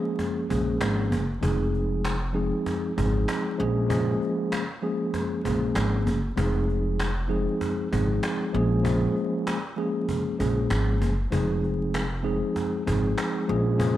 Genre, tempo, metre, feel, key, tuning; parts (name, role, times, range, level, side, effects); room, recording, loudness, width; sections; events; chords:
hip hop, boom-bap hip-hop; 97 BPM; 4/4; swing 59% on 16ths; F minor; A4 = 440 Hz
mellow tine electric piano; accompaniment; 0.0-14.0 s; F3 to Ab4; -26 LUFS; equal; medium stereo tremolo, high-pass filter, low-pass filter
cajon; drums; 0.2-14.0 s; -32 LUFS; equal
upright bass; bass; 0.5-14.0 s; F1 to Bb1; -26 LUFS; equal
small room ambience; vinyl crackle; -23 LUFS; side -13 dB against mid
0.0-14.0 A section
0.0 Bbm7; 1.4 Fm7; 3.6 Bbm7; 6.4 Fm7; 8.5 Bbm7; 11.3 Fm7